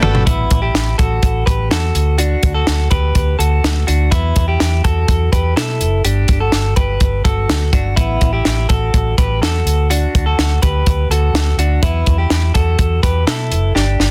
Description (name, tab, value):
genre	jangly indie pop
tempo	124 BPM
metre	4/4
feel	straight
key	unclear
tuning	A4 = 440 Hz
part	direct-recorded clean electric guitar	arpeggios	0.0-14.1 s	B3 to B4	-22 LUFS	equal	lush chorus, tape echo
part	vintage muted fingered electric bass	bass	0.0-14.1 s	F#1 to B2	-18 LUFS	equal	none
part	compact cocktail drum kit	drums	0.0-14.1 s	hi-hat, kick drum, snare drum, toms	-19 LUFS	equal	none
room	small room ambience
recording	dense, heavily limited modern master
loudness	-15 LUFS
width	mono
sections	0.3-14.1 A section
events	drum fill 0.0, 13.8-14.1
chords	0.3 Asus2; 2.0 D; 4.1 Em; 6.0 Gadd9; 8.0 Asus2; 9.7 D; 11.8 Em